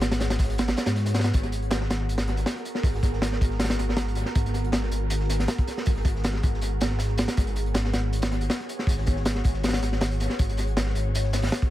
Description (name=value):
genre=drum and bass, jungle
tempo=159 BPM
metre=4/4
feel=straight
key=G# minor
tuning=A4 = 436 Hz
part: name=ethereal airy pad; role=sustained chords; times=0.0-11.7 s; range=B3 to C#5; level=-33 LUFS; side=equal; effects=ensemble chorus, built-in reverb
part: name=dark detuned saw bass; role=bass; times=0.0-11.5 s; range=G#1 to G#2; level=-26 LUFS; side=equal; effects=none
part: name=crunchy breakbeat drum kit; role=drums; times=0.0-11.7 s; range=hi-hat, kick drum, snare drum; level=-26 LUFS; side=equal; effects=dub echo
part: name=crunchy breakbeat drum kit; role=drums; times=0.0-11.7 s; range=hi-hat, snare drum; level=-41 LUFS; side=right 1 dB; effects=high-pass filter on hats, high-pass filter on snare, high-pass filter on room
room=studio reverb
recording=echo-heavy mix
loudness=-23 LUFS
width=side -14 dB against mid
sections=0.0-11.7 A section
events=none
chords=0.0 G#m9